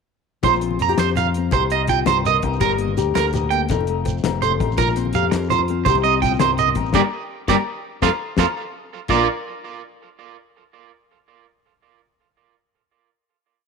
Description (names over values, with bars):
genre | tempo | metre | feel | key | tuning
highlife guitar band | 111 BPM (dotted quarters) | 12/8 | straight | Bb major | A4 = 441 Hz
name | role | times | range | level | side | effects
nylon-string guitar | accompaniment | 0.4-9.3 s | F2 to C5 | -23 LUFS | left 13 dB | none
electric guitar at the edge of break-up | arpeggios | 0.4-9.3 s | F4 to Bb5 | -20 LUFS | right 13 dB | tape echo
fingered electric bass | bass | 0.4-9.3 s | F1 to F2 | -24 LUFS | left 1 dB | none
damped 70s drum kit | drums | 0.4-9.2 s | crash cymbal, hi-hat, kick drum, snare drum | -24 LUFS | left 4 dB | none
agogo bells | percussion | 0.4-9.2 s | none | -31 LUFS | left 12 dB | none
congas | percussion | 0.4-9.3 s | none | -28 LUFS | left 10 dB | none
shekere | percussion | 0.5-9.3 s | none | -28 LUFS | right 4 dB | none
room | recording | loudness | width
light reverb, small room ambience | 1960s-style stereo with parts hard left and right | -17 LUFS | side -5 dB against mid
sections
0.4-9.1 groove; 9.1-11.3 final chord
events
band accent 6.9-9.1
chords
0.4 Bbsus2; 1.5 Cm; 2.6 Gm; 3.7 F; 4.8 Bbsus2; 5.9 Cm; 6.9 Gm; 8.0 F; 9.1 Bb